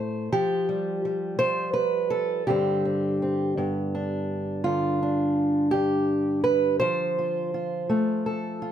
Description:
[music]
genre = folk, solo fingerstyle acoustic guitar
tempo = 55 BPM (dotted quarters)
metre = 6/8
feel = rubato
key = unclear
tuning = A4 = 439 Hz
[part]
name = fingerpicked old ladder-braced acoustic guitar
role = solo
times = 0.0-8.7 s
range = G2 to C5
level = -23 LUFS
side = right 1 dB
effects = none
[sound]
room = light reverb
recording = none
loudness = -23 LUFS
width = side -9 dB against mid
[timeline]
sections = 0.0-8.7 A section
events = none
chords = 0.3 Fsus2; 2.5 Gsus4; 3.6 G; 6.8 F6

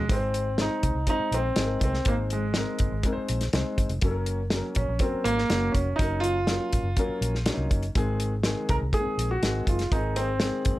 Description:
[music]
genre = uptempo 1960s-style soul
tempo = 122 BPM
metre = 4/4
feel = straight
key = Ab mixolydian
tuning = A4 = 442 Hz
[part]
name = warm grand piano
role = melody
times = 0.0-10.8 s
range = Ab3 to Bb4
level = -28 LUFS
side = right 1 dB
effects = none
[part]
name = warm upright piano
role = accompaniment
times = 0.1-10.8 s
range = Eb3 to C5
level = -32 LUFS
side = left 2 dB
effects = none
[part]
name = vintage muted fingered electric bass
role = bass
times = 0.1-10.7 s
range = F1 to C2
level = -29 LUFS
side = equal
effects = none
[part]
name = warm soul drum kit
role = drums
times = 0.1-10.8 s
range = hi-hat, kick drum, snare drum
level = -27 LUFS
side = equal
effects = none
[sound]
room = light reverb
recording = none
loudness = -24 LUFS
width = side -16 dB against mid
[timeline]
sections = 0.1-10.8 A section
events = none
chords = 0.1 Ab; 4.0 Gb; 8.0 Ab

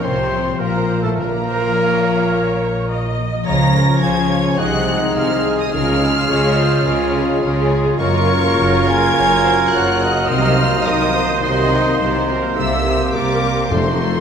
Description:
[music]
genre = classical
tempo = 105 BPM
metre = 4/4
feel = straight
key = unclear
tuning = A4 = 440 Hz
[part]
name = warm symphonic violin section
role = melody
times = 0.0-14.2 s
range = A5 to Bb6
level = -24 LUFS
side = left 2 dB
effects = none
[part]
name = clear clarinet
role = second line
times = 0.0-14.2 s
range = Db4 to C5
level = -26 LUFS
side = left 2 dB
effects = none
[part]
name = mellow concert flute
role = second line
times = 0.0-14.2 s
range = A4 to Bb5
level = -26 LUFS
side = equal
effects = none
[part]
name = mellow oboe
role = second line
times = 0.0-14.2 s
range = A4 to Bb5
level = -28 LUFS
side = right 2 dB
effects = none
[part]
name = warm symphonic violin section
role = second line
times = 0.0-14.2 s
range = A3 to Db5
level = -28 LUFS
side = left 4 dB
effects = none
[part]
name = mellow bassoon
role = accompaniment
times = 0.0-14.2 s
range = F3 to C4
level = -26 LUFS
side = right 2 dB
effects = none
[part]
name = rich symphonic viola section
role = accompaniment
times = 0.0-14.2 s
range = Gb4 to Eb5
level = -25 LUFS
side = right 1 dB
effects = none
[part]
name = dark trombone section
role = sustained chords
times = 0.0-14.2 s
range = A2 to Ab3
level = -25 LUFS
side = right 2 dB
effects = none
[part]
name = concert harp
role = arpeggios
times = 0.0-14.2 s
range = F2 to Eb6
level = -24 LUFS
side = left 8 dB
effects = none
[part]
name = warm trumpet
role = stabs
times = 0.0-14.2 s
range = Ab4 to Db5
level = -24 LUFS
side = right 3 dB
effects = none
[part]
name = rich symphonic cello section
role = bass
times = 0.0-14.2 s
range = F2 to Db3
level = -23 LUFS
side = right 2 dB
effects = none
[part]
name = rich symphonic double bass section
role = bass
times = 0.0-14.2 s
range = F1 to Db2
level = -23 LUFS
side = right 3 dB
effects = none
[part]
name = warm French horn section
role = sustained chords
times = 0.1-14.2 s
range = A3 to G4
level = -27 LUFS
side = left 3 dB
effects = none
[part]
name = timpani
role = percussion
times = 1.2-2.0, 13.7-14.2 s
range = F2 to Bb2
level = -25 LUFS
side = left 2 dB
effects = none
[sound]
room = wet recital hall reverb, RT60 1.8 s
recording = none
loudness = -14 LUFS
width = side -7 dB against mid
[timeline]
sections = 0.0-14.2 A section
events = none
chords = 0.0 F/C; 1.2 Bbm; 3.5 Db; 4.6 Ab/C; 5.7 Db; 8.0 Gbmaj7; 10.3 Cm7b5; 12.6 C7

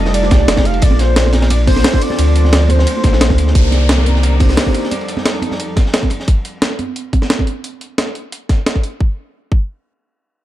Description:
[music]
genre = liquid drum and bass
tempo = 176 BPM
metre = 4/4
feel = swing 53% on 16ths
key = unclear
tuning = A4 = 441 Hz
[part]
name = warm velvety synth lead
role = melody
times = 0.0-3.2 s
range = Bb4 to F5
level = -21 LUFS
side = equal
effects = chorus, tape echo
[part]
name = mellow tine electric piano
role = accompaniment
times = 0.0-4.9 s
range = A3 to D5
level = -21 LUFS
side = right 1 dB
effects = wide subtle chorus, low-pass filter, digital delay
[part]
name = dark studio string section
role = sustained chords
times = 0.0-6.3 s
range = F2 to D6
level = -25 LUFS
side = equal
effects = sidechain pumping
[part]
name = sub bass with octave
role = bass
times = 0.0-4.6 s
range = F1 to D2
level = -13 LUFS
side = equal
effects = none
[part]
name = breakbeat sampler-style drum kit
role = drums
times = 0.1-8.9 s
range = hi-hat, ride cymbal, snare drum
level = -18 LUFS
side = equal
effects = none
[part]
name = crunchy breakbeat drum kit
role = drums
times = 0.1-6.3 s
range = hi-hat, ride cymbal, snare drum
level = -25 LUFS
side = equal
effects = high-pass filter on cymbals, high-pass filter on hats, high-pass filter on snare, high-pass filter on room
[part]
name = congas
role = percussion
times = 0.1-7.5 s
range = none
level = -24 LUFS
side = right 5 dB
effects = none
[part]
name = electronic kick drum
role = drums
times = 0.3-9.6 s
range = none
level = -13 LUFS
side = equal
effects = none
[part]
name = downlifter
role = sound effects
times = 3.6-6.3 s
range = none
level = -28 LUFS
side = equal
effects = none
[sound]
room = studio reverb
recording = dark, warm production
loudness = -12 LUFS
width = side -14 dB against mid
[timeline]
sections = 0.0-3.5 A section; 3.5-9.0 B section; 9.0-10.4 C section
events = drop 0.0-3.5; filter sweep on tine electric piano 3.5-4.9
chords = 0.0 F13; 0.8 Bbmaj7; 2.0 Dm7; 2.9 Bbmaj9; 3.5 Cm9; 4.9 F13; 6.3 N.C.

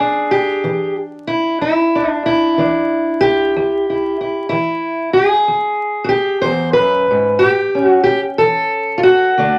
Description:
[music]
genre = acoustic country blues, solo or duo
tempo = 62 BPM (dotted quarters)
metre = 12/8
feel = straight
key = unclear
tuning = A4 = 442 Hz
[part]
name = fingerpicked steel-string acoustic guitar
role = solo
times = 0.0-9.6 s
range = E2 to C5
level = -15 LUFS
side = equal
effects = none
[sound]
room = moderate studio reverb, RT60 0.5 s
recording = vinyl crackle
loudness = -16 LUFS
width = mono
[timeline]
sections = 0.0-9.6 A section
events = none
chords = 0.0 E7; 7.4 A7

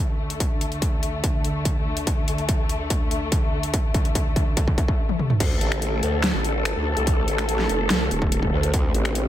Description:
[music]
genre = heavy wobble dubstep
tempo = 144 BPM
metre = 4/4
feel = half-time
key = unclear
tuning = A4 = 440 Hz
[part]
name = dark studio string section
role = sustained chords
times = 0.0-9.3 s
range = D2 to A4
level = -27 LUFS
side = left 1 dB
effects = sidechain pumping, low-pass filter
[part]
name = dubstep drum kit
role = drums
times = 0.3-9.2 s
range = crash cymbal, finger snaps, hi-hat, snare drum, toms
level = -26 LUFS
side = left 1 dB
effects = none
[part]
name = electronic kick drum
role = drums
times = 0.4-8.8 s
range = none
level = -22 LUFS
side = equal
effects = distortion
[part]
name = growl bass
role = bass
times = 5.4-9.3 s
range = Eb1 to D2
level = -24 LUFS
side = equal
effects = chorus, overdrive
[sound]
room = little or no reverb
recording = none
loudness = -20 LUFS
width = side -12 dB against mid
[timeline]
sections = 0.0-5.4 A section; 5.4-9.3 B section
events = build-up 0.0-5.4; drum fill 2.1-5.0, 5.1-5.4; drop 5.4-9.3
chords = 0.0 D5

